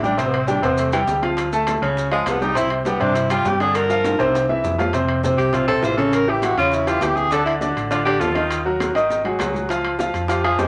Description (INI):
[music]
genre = Afro-Cuban jazz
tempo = 202 BPM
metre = 4/4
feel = straight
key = C major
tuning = A4 = 439 Hz
[part]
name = breathy tenor saxophone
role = melody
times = 0.0-10.7 s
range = E3 to C5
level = -24 LUFS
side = equal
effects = none
[part]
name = clear grand piano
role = accompaniment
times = 0.0-10.7 s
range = C3 to A5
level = -22 LUFS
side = equal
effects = none
[part]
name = hollow-body short-scale fingered electric bass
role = bass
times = 0.0-10.7 s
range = Ab1 to G2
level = -31 LUFS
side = equal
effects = none
[part]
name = congas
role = percussion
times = 0.0-10.7 s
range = none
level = -36 LUFS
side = equal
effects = none
[part]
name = maracas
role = percussion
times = 0.0-10.7 s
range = none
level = -43 LUFS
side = equal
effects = none
[part]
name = bongos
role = percussion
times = 0.2-10.7 s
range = none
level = -37 LUFS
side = equal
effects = none
[part]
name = timbales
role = percussion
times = 0.2-10.7 s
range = none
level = -32 LUFS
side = equal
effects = none
[sound]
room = wet club reverb, RT60 0.8 s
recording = none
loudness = -20 LUFS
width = mono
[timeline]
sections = 0.0-4.9 A section; 4.9-10.7 A section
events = drum fill 0.0, 4.0-4.9, 8.8-9.7; tenor saxophone solo 0.0-10.7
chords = 0.2 Am7; 1.4 Dm; 2.0 Db; 2.6 C5; 3.7 Gm7; 4.3 C; 4.9 Fmaj7; 6.1 A7; 7.3 Dm; 8.5 Ebm; 9.1 Ab5; 9.7 Db